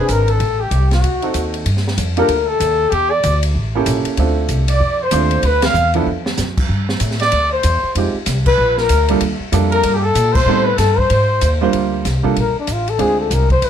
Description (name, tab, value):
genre	jazz, small-group swing and bop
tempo	191 BPM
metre	4/4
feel	swing 62% on 8ths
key	G minor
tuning	A4 = 439 Hz
part	mellow flugelhorn	melody	0.0-13.7 s	D4 to F5	-17 LUFS	left 4 dB	none
part	clear trumpet	second line	0.0-11.6 s	F#4 to F5	-22 LUFS	right 5 dB	none
part	clear baby grand piano	accompaniment	0.0-13.5 s	F3 to C5	-19 LUFS	right 5 dB	none
part	upright bass	bass	0.0-13.7 s	G#1 to Bb2	-18 LUFS	equal	none
part	open jazz drum kit	drums	0.1-13.7 s	crash cymbal, hi-hat, kick drum, ride cymbal, snare drum	-23 LUFS	equal	none
room	light reverb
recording	close, detailed microphones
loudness	-14 LUFS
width	side -9 dB against mid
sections	0.0-1.7 A section; 1.7-11.7 B section; 11.7-13.7 C section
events	band accent 5.6, 8.4, 10.3; drum fill 6.1-6.4; flugelhorn solo 11.7-13.7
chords	0.4 Am7; 1.0 D7b9; 1.7 Gm9; 2.9 Dsus24; 3.5 A7b9; 4.2 Dm7; 5.4 Dm69; 6.7 C69; 8.0 Fm7; 8.6 Bb; 9.2 Ebmaj9#11; 10.5 Am7b5; 11.1 Abadd9; 11.7 Gm9; 13.0 Dm7b5